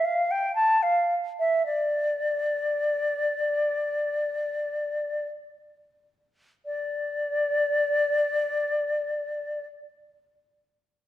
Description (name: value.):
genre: classical, baroque-style fantasia for unaccompanied flute.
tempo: free time.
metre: none.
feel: none.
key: D minor.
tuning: A4 = 440 Hz.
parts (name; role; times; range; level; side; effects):
wooden flute; solo; 0.0-9.6 s; D5 to A5; -24 LUFS; left 1 dB; none.
room: moderate recital hall reverb, RT60 1.5 s.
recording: none.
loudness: -24 LUFS.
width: side -13 dB against mid.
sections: 0.0-6.7 A section; 6.7-11.1 B section.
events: slowing down 0.0-6.7.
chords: none.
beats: free time.